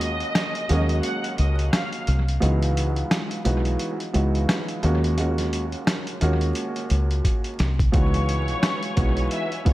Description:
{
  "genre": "hip hop, boom-bap hip-hop",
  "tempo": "87 BPM",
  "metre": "4/4",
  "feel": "swing 59% on 16ths",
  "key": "unclear",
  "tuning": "A4 = 441 Hz",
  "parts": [
    { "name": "warm symphonic violin section", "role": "melody", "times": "0.0-2.0, 7.9-9.7 s", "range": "C#5 to F#6", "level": "-29 LUFS", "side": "equal", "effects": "high-pass filter, low-pass filter, analog delay" },
    { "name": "dark upright piano", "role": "accompaniment", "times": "0.0-9.7 s", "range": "C#2 to F#4", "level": "-27 LUFS", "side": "right 1 dB", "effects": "high-pass filter, low-pass filter, analog delay" },
    { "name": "deep dub fingered electric bass", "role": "bass", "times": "0.0-9.7 s", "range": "B1 to D#2", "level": "-22 LUFS", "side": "equal", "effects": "none" },
    { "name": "boom bap sampler-style drum kit", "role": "drums", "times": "0.0-9.7 s", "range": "hi-hat, kick drum, rim click, snare drum", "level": "-25 LUFS", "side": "equal", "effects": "analog delay" },
    { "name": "clear studio string section", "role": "sustained chords", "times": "7.9-9.7 s", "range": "B4 to G#5", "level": "-38 LUFS", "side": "left 2 dB", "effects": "high-pass filter, low-pass filter" }
  ],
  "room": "light reverb, studio reverb",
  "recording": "echo-heavy mix, vinyl crackle",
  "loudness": "-20 LUFS",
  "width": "side -16 dB against mid",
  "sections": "0.0-9.7 A section",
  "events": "break 0.0-7.9; drum fill 7.2-7.9",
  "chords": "0.0 D#m11; 2.4 C#m11; 4.8 D#m11; 7.9 C#m11",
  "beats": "0.35 1.04 1.73 | 2.42 3.11 3.80 4.49 | 5.18 5.87 6.56 7.25 | 7.94 8.63 9.32"
}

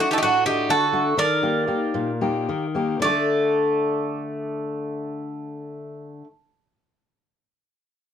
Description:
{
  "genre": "greek folk, Greek bouzouki band",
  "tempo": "209-256 BPM (eighths)",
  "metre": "7/8",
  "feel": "straight",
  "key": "unclear",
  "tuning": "A4 = 440 Hz",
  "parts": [
    { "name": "Greek bouzouki", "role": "melody", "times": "0.0-6.2 s", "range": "F#4 to D5", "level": "-23 LUFS", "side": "right 3 dB", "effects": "none" },
    { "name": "Greek bouzouki", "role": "second line", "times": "0.0-6.3 s", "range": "A3 to Bb4", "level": "-28 LUFS", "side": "right 3 dB", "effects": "none" },
    { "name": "fingerpicked steel-string acoustic guitar", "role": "accompaniment", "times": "0.0-6.3 s", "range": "A2 to A4", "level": "-24 LUFS", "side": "left 3 dB", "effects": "none" }
  ],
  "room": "moderate studio reverb, RT60 0.5 s",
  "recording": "none",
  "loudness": "-20 LUFS",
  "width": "side -8 dB against mid",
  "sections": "0.0-3.0 A section; 3.0-7.0 B section",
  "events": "slowing down 0.0-3.0",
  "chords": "0.0 D; 1.2 Eb; 3.0 D5",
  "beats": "0.22 0.46 0.70 0.94 | 1.19 1.44 1.69 1.95 2.21 2.48 2.76 | 3.04 3.32 3.61 3.89 4.18 4.47 4.75 | 5.04 5.32 5.61 5.89 6.18"
}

